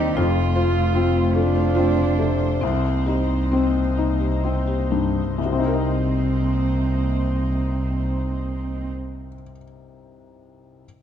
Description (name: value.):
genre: neoclassical piano and strings.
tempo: 42-53 BPM (dotted quarters).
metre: 6/8.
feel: rubato.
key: C dorian.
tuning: A4 = 440 Hz.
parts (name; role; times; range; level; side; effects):
dark cello; second line; 0.0-8.9 s; C4 to F4; -26 LUFS; right 5 dB; none.
felt-muted upright piano; accompaniment; 0.0-10.9 s; C2 to Eb5; -24 LUFS; left 4 dB; none.
warm studio string section; sustained chords; 0.0-8.9 s; G3 to D5; -31 LUFS; right 2 dB; none.
warm double bass; bass; 0.0-8.9 s; F1 to Eb2; -24 LUFS; equal; none.
buzzing marimba with medium hard mallets; arpeggios; 0.2-5.1 s; C4 to C5; -29 LUFS; equal; tape echo.
room: moderate concert hall reverb, RT60 1.8 s.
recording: dark, warm production.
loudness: -19 LUFS.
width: side -9 dB against mid.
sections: 0.0-5.4 A section; 5.4-8.1 B section.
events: slowing down 0.0-5.4.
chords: 0.2 F; 2.6 Cm7.